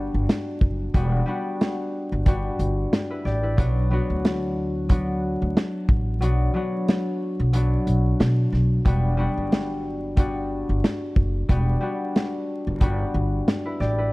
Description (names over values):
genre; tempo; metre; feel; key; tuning
hip hop, boom-bap hip-hop; 91 BPM; 4/4; swing 57% on 16ths; E minor; A4 = 440 Hz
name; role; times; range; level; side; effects
concert harp; accompaniment; 0.0-14.1 s; F#3 to D5; -26 LUFS; left 1 dB; cassette tape, high-pass filter, low-pass filter
upright bass; bass; 0.0-14.1 s; E1 to B2; -23 LUFS; equal; none
warm soul drum kit; drums; 0.3-13.9 s; hi-hat, kick drum, snare drum; -21 LUFS; equal; none
room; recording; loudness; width
studio reverb; vinyl crackle; -21 LUFS; side -22 dB against mid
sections
0.0-14.1 A section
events
kick muted 6.2-8.9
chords
0.0 Em7; 3.6 Bm; 8.9 Em7